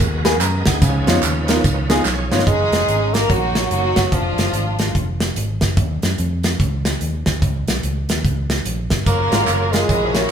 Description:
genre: uptempo gospel.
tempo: 146 BPM.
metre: 4/4.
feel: swing 62% on 8ths.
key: F# major.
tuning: A4 = 440 Hz.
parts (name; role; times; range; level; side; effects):
bright tonewheel organ; sustained chords; 0.0-2.7, 9.1-10.3 s; E3 to D#5; -27 LUFS; right 2 dB; slow rotary speaker, overdrive, chorus vibrato.
fingered electric bass; bass; 0.0-10.3 s; E#1 to F#2; -22 LUFS; equal; none.
modern studio drum kit; drums; 0.0-10.2 s; hi-hat, kick drum, snare drum; -20 LUFS; right 1 dB; none.
tambourine and handclaps; percussion; 0.0-2.4, 9.1-10.2 s; none; -27 LUFS; right 5 dB; none.
clear upright piano; accompaniment; 0.2-2.4, 9.3-10.3 s; A#2 to A#5; -21 LUFS; equal; none.
breathy tenor saxophone; melody; 2.5-4.9, 9.1-10.3 s; F3 to A#3; -21 LUFS; right 4 dB; none.
rich symphonic string section; melody; 2.5-5.0, 9.1-10.3 s; Ab3 to A#4; -22 LUFS; left 3 dB; none.
room: moderate stone room reverb, RT60 1.1 s.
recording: band playing live in one room.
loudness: -16 LUFS.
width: side -8 dB against mid.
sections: 0.0-2.5 A section; 2.5-10.3 B section.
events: drum fill 2.1-2.5.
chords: 0.0 G#m9/D#; 0.8 C#9; 2.5 F#69; 4.1 Fm6; 5.8 D#madd9; 6.6 C#sus2; 7.4 Badd9; 8.2 Gdim; 9.1 F#maj9.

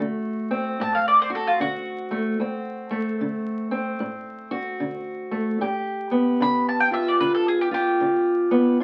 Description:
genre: acoustic country blues, solo or duo.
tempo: 75 BPM.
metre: 4/4.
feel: swing 63% on 8ths.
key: D mixolydian.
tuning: A4 = 441 Hz.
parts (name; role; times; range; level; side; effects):
fingerpicked steel-string acoustic guitar; accompaniment; 0.0-8.8 s; D2 to G4; -25 LUFS; equal; none.
mandolin; melody; 0.8-8.8 s; F4 to B5; -25 LUFS; equal; none.
room: wet small room reverb, RT60 0.5 s.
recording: very old 78 rpm record, vinyl crackle.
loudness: -24 LUFS.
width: mono.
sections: 0.0-8.8 A section.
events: mandolin solo 0.0-8.8.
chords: 0.0 D7; 5.6 G7.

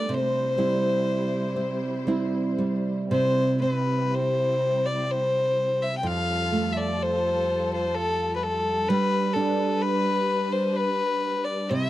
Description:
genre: celtic folk, Celtic slow air.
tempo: 58-65 BPM.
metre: 3/4.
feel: rubato.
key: C major.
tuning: A4 = 440 Hz.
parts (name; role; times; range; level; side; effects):
rich fiddle; melody; 0.0-11.9 s; A4 to G5; -25 LUFS; left 2 dB; none.
nylon-string guitar; accompaniment; 0.0-11.9 s; F2 to E4; -27 LUFS; right 2 dB; none.
dark symphonic string section; sustained chords; 0.0-11.9 s; G3 to C5; -33 LUFS; left 2 dB; none.
room: little or no reverb.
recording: dry, close 1970s-style studio recording.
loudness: -22 LUFS.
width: side -14 dB against mid.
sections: 0.0-3.1 A section; 3.1-11.9 B section.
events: none.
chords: 0.1 C; 6.0 Fadd9; 8.9 G.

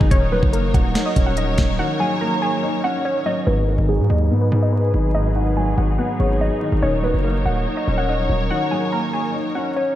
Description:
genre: hip hop, trap.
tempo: 143 BPM.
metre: 4/4.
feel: half-time.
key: G# minor.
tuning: A4 = 436 Hz.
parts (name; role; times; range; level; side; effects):
warbly dusty pluck; melody; 0.0-9.9 s; G#4 to A#5; -24 LUFS; equal; chorus, low-pass filter, diffuse ambient delay.
dark baby grand piano; accompaniment; 0.0-10.0 s; G#2 to D#4; -24 LUFS; left 1 dB; low-pass filter.
warm studio string section; sustained chords; 0.0-10.0 s; F#3 to C#5; -27 LUFS; equal; low-pass filter.
hard-hitting 808-style bass; bass; 0.0-8.5 s; D#1 to G#2; -20 LUFS; equal; none.
trap drum kit; drums; 0.0-1.7 s; finger snaps, hi-hat, kick drum, snare drum; -18 LUFS; equal; none.
room: moderate lush hall reverb, RT60 1.7 s.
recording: dreamy mix soaked in reverb, vinyl crackle.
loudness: -17 LUFS.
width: side -13 dB against mid.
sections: 0.0-3.5 A section; 3.5-10.0 B section.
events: break 1.8-3.5; filter sweep 3.5-10.0.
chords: 0.1 D#m7; 3.5 G#m7; 6.8 D#m7.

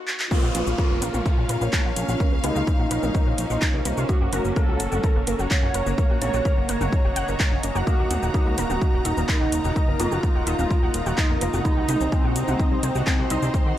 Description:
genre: melodic techno.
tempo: 127 BPM.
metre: 4/4.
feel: straight.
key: Bb minor.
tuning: A4 = 440 Hz.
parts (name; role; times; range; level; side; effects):
house drum kit; drums; 0.1-13.6 s; handclaps, hi-hat, shaker, toms; -29 LUFS; equal; high-pass filter on snare, studio ambience, sidechain pumping on perc, high-pass filter on perc, sidechain pumping on hats, high-pass filter on hats, sidechain pumping on toms, high-pass filter on toms.
analog synth brass; melody; 0.3-13.7 s; C4 to Db5; -30 LUFS; equal; chorus, sidechain pumping, dub echo.
dark detuned synth bell; second line; 0.3-13.7 s; C4 to Db5; -33 LUFS; right 1 dB; chorus, sidechain pumping, tape echo.
deep dark ambient pad; sustained chords; 0.3-13.8 s; Bb3 to Gb5; -34 LUFS; equal; chorus, built-in reverb, vintage 12-bit sampler grit, sidechain pumping.
warbly dusty pluck; arpeggios; 0.3-13.8 s; Bb3 to Gb6; -30 LUFS; equal; ensemble chorus, sidechain pumping, tape echo.
swarming drone; drone; 4.0-13.8 s; Bb2 to Db3; -38 LUFS; left 1 dB; none.
electronic kick drum; drums; 0.3-13.6 s; none; -22 LUFS; equal; studio ambience.
downlifter; sound effects; 0.3-4.1 s; none; -34 LUFS; right 1 dB; none.
rich symphonic string section; texture; 0.3-13.8 s; Bb3 to C6; -33 LUFS; right 1 dB; sidechain pumping.
fat analog bass; bass; 0.4-13.7 s; Eb1 to Eb2; -27 LUFS; equal; sidechain pumping.
room: little or no reverb.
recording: high-pass filter.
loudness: -20 LUFS.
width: side -12 dB against mid.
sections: 0.3-13.8 A section.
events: stop 0.0-0.3; drum fill 0.1; drop 0.3-13.8.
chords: 0.3 Bbm; 4.1 Gb; 7.9 Ebm; 11.7 Cdim.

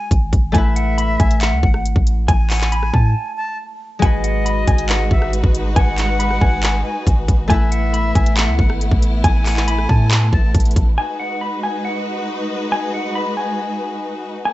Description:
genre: hip hop, trap.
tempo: 138 BPM.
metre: 4/4.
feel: half-time.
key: G# phrygian.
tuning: A4 = 440 Hz.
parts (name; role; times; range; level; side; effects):
mellow electric guitar; melody; 0.0-14.5 s; F#5 to B5; -24 LUFS; left 1 dB; slapback echo.
bright reedy jazz flute; second line; 0.0-10.5 s; D#5 to A5; -26 LUFS; left 2 dB; slapback echo.
concert harp; accompaniment; 0.0-11.0 s; G#3 to B4; -26 LUFS; left 3 dB; none.
clean 808-style bass; bass; 0.1-11.0 s; G#1 to A2; -17 LUFS; equal; none.
trap drum kit; drums; 0.1-10.9 s; handclaps, hi-hat, kick drum, rim click; -17 LUFS; equal; none.
rich symphonic string section; sustained chords; 4.0-14.5 s; G#3 to B4; -25 LUFS; equal; none.
room: studio ambience.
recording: nothing above 7.9 kHz.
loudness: -15 LUFS.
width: side -16 dB against mid.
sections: 0.0-11.0 A section; 11.0-14.5 A section.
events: break 3.2-4.0.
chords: 0.0 G#m7; 0.5 Asus2; 4.0 G#m7; 7.5 Asus2; 11.0 G#m7.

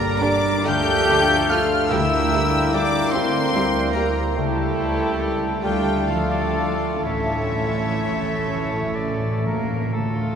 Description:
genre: classical.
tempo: 40-51 BPM (dotted quarters).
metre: 6/8.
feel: rubato.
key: unclear.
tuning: A4 = 440 Hz.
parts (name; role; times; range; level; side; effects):
warm studio violin section; melody; 0.0-10.4 s; A4 to G6; -28 LUFS; left 5 dB; none.
bright oboe; second line; 0.0-10.4 s; A4 to G5; -31 LUFS; equal; none.
concert flute; second line; 0.0-10.3 s; E5 to G6; -29 LUFS; left 1 dB; none.
warm clarinet; second line; 0.0-9.5 s; E4 to G5; -30 LUFS; equal; none.
mellow bassoon; accompaniment; 0.0-9.5 s; G3 to Bb3; -29 LUFS; right 1 dB; none.
dark French horn section; sustained chords; 0.0-10.4 s; F3 to E4; -30 LUFS; left 2 dB; none.
concert harp; arpeggios; 0.0-10.4 s; G2 to A5; -29 LUFS; left 3 dB; none.
dark trumpet section; stabs; 0.0-9.6 s; A4 to Bb4; -30 LUFS; equal; none.
dark studio double bass section; bass; 0.0-10.4 s; G1 to D2; -29 LUFS; right 1 dB; none.
warm studio cello section; bass; 0.0-10.4 s; E3 to G4; -28 LUFS; right 2 dB; none.
warm studio violin section; second line; 0.2-10.4 s; F4 to Bb4; -33 LUFS; left 2 dB; none.
dark studio viola section; accompaniment; 0.2-10.4 s; D3 to F4; -30 LUFS; right 3 dB; none.
timpani; percussion; 1.9-3.1, 7.1-10.4 s; A2 to D3; -30 LUFS; right 1 dB; none.
room: wet cathedral reverb, RT60 7.0 s.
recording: recorded in a church or concert hall.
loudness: -18 LUFS.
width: side -7 dB against mid.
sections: 0.0-9.9 A section.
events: timpani fill 7.0-9.9.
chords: 0.0 Gm; 0.7 Dm; 1.9 Em7b5/D; 4.4 A7/C#; 5.6 Dm; 7.0 A.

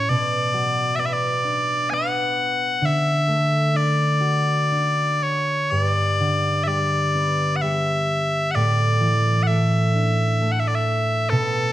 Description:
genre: celtic folk, Celtic slow air.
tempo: 64 BPM.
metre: 3/4.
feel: uneven beats, rubato.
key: A mixolydian.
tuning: A4 = 442 Hz.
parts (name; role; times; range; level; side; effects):
loud bright bagpipes; melody; 0.0-11.7 s; A4 to G#5; -21 LUFS; left 1 dB; none.
concert harp; accompaniment; 0.0-11.7 s; G2 to F#4; -22 LUFS; right 1 dB; none.
room: moderate recital hall reverb, RT60 1.5 s.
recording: none.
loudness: -18 LUFS.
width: side -14 dB against mid.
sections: 0.0-11.7 A section.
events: none.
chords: 0.1 Bm; 2.8 D; 5.7 G; 8.6 Asus4.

